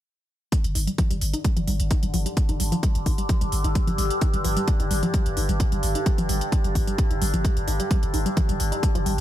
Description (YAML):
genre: driving peak-time techno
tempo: 130 BPM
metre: 4/4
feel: straight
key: unclear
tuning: A4 = 440 Hz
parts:
  - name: tight sequenced synth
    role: riff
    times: 0.5-9.1 s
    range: F3 to Eb4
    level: -29 LUFS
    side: equal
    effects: chorus, cassette tape, sidechain pumping, dub echo
  - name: overtone-sweeping drone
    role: drone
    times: 1.3-9.2 s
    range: G2 to D3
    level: -31 LUFS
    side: equal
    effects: chorus, built-in reverb, sidechain pumping
  - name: electronic hi-hat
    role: drums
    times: 0.5-9.2 s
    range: none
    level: -33 LUFS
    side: equal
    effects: overdrive, studio reverb
  - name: electronic kick drum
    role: drums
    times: 0.5-8.9 s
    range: none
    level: -22 LUFS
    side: equal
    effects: overdrive, studio reverb
  - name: deep dark ambient pad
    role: texture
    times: 2.3-9.2 s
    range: G4 to A5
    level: -33 LUFS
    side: equal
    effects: chorus, built-in reverb, sidechain pumping
  - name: growling 808-style bass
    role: bass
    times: 0.6-9.2 s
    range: G1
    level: -26 LUFS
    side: equal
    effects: sidechain pumping, low-pass filter
room: light reverb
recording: none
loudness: -21 LUFS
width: side -12 dB against mid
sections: 0.5-9.2 A section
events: filter sweep on synth arpeggio sound 0.5-9.2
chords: 0.5 G5